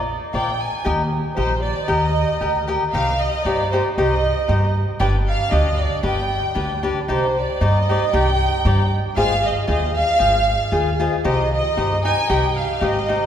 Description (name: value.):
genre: mexican folk, mariachi.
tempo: 116 BPM.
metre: 2/4.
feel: rubato.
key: C minor.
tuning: A4 = 435 Hz.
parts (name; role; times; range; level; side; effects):
upright bass; bass; 0.0-13.2 s; G1 to G2; -21 LUFS; equal; none.
warm studio violin section; melody; 0.3-13.2 s; C5 to Ab5; -22 LUFS; right 1 dB; none.
cavaquinho; accompaniment; 0.3-13.2 s; D4 to G5; -22 LUFS; left 1 dB; none.
room: wet church reverb, RT60 3.2 s.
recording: recorded in a church or concert hall.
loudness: -17 LUFS.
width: side -9 dB against mid.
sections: 0.0-2.9 A section; 2.9-13.3 B section.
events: none.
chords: 0.0 Bbadd9; 0.8 Eb; 2.9 Cm; 5.0 G; 7.1 Cmadd9; 9.2 Ab6; 11.2 Cm.